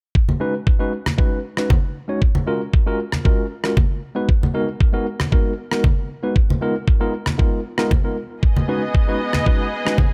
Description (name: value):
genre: nu-disco, nu disco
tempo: 116 BPM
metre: 4/4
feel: straight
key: unclear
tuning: A4 = 440 Hz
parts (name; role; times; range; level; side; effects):
- electronic kick drum; drums; 0.1-10.1 s; none; -19 LUFS; equal; none
- congas; percussion; 0.3-10.1 s; none; -26 LUFS; equal; none
- tine electric piano; accompaniment; 0.4-10.0 s; G#3 to C#5; -26 LUFS; equal; sidechain pumping, low-pass filter, analog delay
- rim click; drums; 1.1-10.0 s; none; -26 LUFS; equal; none
- muted studio string section; sustained chords; 8.4-10.1 s; B3 to D#5; -27 LUFS; equal; vintage 12-bit sampler grit, sidechain pumping
room: light reverb, small room ambience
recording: none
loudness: -19 LUFS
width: mono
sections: 0.2-10.1 A section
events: none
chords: 0.2 B6; 2.2 F#maj9; 4.0 G#m7; 6.4 G#m69; 8.4 B6